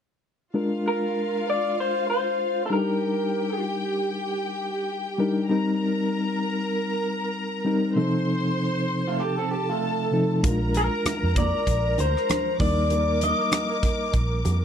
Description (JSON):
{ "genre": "lush 1970s-style soul", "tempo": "97 BPM", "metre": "4/4", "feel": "swing 58% on 16ths", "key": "unclear", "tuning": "A4 = 441 Hz", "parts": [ { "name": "warm studio string section", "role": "second line", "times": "0.5-14.6 s", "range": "F4 to D6", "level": "-30 LUFS", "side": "right 1 dB", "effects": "none" }, { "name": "mellow reed electric piano", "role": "accompaniment", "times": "0.5-14.6 s", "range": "C3 to Bb4", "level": "-26 LUFS", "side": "left 2 dB", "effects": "fast tremolo" }, { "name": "electric guitar through a small old amp", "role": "melody", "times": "0.9-3.6, 10.8-14.1 s", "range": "A4 to Eb5", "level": "-25 LUFS", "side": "left 1 dB", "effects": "none" }, { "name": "electric guitar through a small old amp", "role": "riff", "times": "9.1-10.4 s", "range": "A3 to A4", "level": "-28 LUFS", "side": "right 6 dB", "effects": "none" }, { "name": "vintage muted fingered electric bass", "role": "bass", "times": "10.4-14.6 s", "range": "Bb1 to F2", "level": "-25 LUFS", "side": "right 1 dB", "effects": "none" }, { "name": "modern studio drum kit", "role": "drums", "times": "10.4-14.6 s", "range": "hi-hat, kick drum, rim click", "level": "-26 LUFS", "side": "equal", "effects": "none" }, { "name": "congas", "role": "percussion", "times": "10.4-14.6 s", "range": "none", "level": "-33 LUFS", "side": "right 4 dB", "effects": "none" } ], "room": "small room ambience", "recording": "dry, close 1970s-style studio recording", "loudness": "-22 LUFS", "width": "side -8 dB against mid", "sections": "0.6-14.6 A section", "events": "none", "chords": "0.6 Bb7; 2.7 Ebmaj7; 5.5 Cm7; 8.0 F7/C; 10.4 Bb7; 12.6 Ebmaj7" }